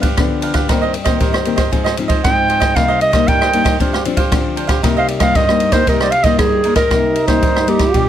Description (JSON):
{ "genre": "samba and choro", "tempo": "116 BPM", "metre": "4/4", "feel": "straight", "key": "C minor", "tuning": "A4 = 443 Hz", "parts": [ { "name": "cavaquinho", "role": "accompaniment", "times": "0.0-6.9 s", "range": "D4 to F5", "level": "-21 LUFS", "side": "right 7 dB", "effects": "none" }, { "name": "nylon-string guitar", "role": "accompaniment", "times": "0.0-8.1 s", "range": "G2 to F4", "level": "-18 LUFS", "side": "left 6 dB", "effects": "none" }, { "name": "open jazz drum kit", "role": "drums", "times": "0.0-8.1 s", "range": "kick drum, ride cymbal, rim click", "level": "-17 LUFS", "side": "equal", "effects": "none" }, { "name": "warm clarinet", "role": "melody", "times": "2.2-8.1 s", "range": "G4 to G5", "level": "-15 LUFS", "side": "right 2 dB", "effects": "none" }, { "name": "clear trombone", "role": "second line", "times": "6.9-8.1 s", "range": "Eb4 to G4", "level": "-19 LUFS", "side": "right 4 dB", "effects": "none" } ], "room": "light reverb", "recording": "close, detailed microphones", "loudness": "-12 LUFS", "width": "side -10 dB against mid", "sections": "0.0-6.9 A section; 6.9-8.1 B section", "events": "clarinet solo 0.0-6.9", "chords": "0.0 G7; 0.7 Cm7/G; 1.7 Fm7/Ab; 2.8 Cm7; 3.8 G7sus4; 4.8 Cm7" }